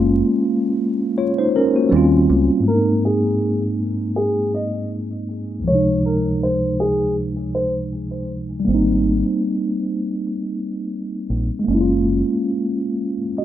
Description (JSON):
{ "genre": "lo-fi hip hop", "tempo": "80 BPM", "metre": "4/4", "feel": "swing 56% on 16ths", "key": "Ab major", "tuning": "A4 = 437 Hz", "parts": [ { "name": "mellow tine electric piano", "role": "accompaniment", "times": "0.0-13.4 s", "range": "Db2 to Eb5", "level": "-18 LUFS", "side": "equal", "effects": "medium stereo tremolo, cassette tape, low-pass filter" }, { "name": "deep dub fingered electric bass", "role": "bass", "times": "0.0-2.5, 8.7-12.2 s", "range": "Gb1 to Eb2", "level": "-20 LUFS", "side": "equal", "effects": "none" }, { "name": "warm upright piano", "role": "melody", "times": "2.7-7.7 s", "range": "Ab4 to Eb5", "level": "-22 LUFS", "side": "equal", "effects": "low-pass filter, tape echo" } ], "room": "moderate studio reverb, RT60 0.5 s", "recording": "rough home demo mix, vinyl crackle, low-pass filter", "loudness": "-17 LUFS", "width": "side -12 dB against mid", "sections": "0.0-2.7 A section; 2.7-13.4 B section", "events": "none", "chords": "0.0 Gbmaj7; 1.9 Eb13; 2.7 Abadd9; 5.7 Dbmaj9; 8.7 Abmaj9; 11.7 Gbmaj7", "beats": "0.42 1.17 1.92 | 2.67 3.42 4.17 4.92 | 5.67 6.42 7.17 7.92 | 8.67 9.42 10.17 10.92 | 11.67 12.42 13.17" }